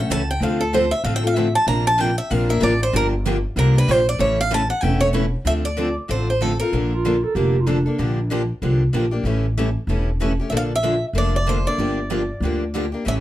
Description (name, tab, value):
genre	acoustic string swing (jazz manouche)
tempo	190 BPM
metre	4/4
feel	swing 60% on 8ths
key	D minor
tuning	A4 = 439 Hz
part	picked swing-style acoustic guitar	melody	0.0-7.8, 10.5-13.1 s	A4 to Bb5	-22 LUFS	right 1 dB	none
part	picked steel-string acoustic guitar	accompaniment	0.0-13.2 s	C3 to Bb4	-24 LUFS	left 4 dB	none
part	upright bass	bass	0.0-13.2 s	E1 to D2	-21 LUFS	equal	none
part	picked steel-string acoustic guitar	accompaniment	0.1-13.2 s	C3 to Bb4	-28 LUFS	right 7 dB	none
part	breathy clarinet	second line	6.9-8.3 s	D4 to A4	-23 LUFS	right 4 dB	none
room	light reverb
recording	none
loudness	-18 LUFS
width	side -14 dB against mid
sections	0.0-5.5 A section; 5.5-13.2 B section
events	steel-string acoustic guitar solo 0.0-5.5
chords	0.4 Dm7; 1.7 Bbadd9; 2.9 Gm7; 4.2 A; 5.5 Dm7; 6.7 Bbmaj7; 8.0 Gm7/Bb; 9.2 A7; 10.5 Bbmaj7; 11.8 Gm7